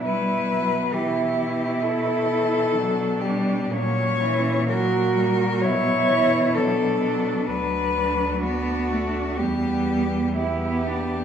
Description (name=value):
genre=classical, lyrical piece for cello ensemble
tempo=56-68 BPM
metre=4/4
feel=rubato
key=B minor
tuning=A4 = 440 Hz
part: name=rich cello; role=melody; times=0.0-11.2 s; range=F#4 to C#5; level=-25 LUFS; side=left 4 dB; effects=none
part: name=dark cello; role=second line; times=0.0-11.2 s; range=B3 to F#4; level=-26 LUFS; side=right 6 dB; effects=none
part: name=rich cello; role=accompaniment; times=0.0-11.2 s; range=E3 to B3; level=-28 LUFS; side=left 2 dB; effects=none
part: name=rich cello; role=bass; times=0.0-11.2 s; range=D2 to B2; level=-27 LUFS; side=right 1 dB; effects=none
room=wet recital hall reverb, RT60 1.4 s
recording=recorded in a church or concert hall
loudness=-20 LUFS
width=side -8 dB against mid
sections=0.0-11.2 A section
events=none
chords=0.0 Gmaj13/B; 3.7 F#7/A#; 5.6 Bm; 7.5 Bm/D; 9.4 Em7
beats=| 0.03 0.92 1.83 2.73 | 3.73 4.69 5.63 6.55 | 7.47 8.42 9.39 10.36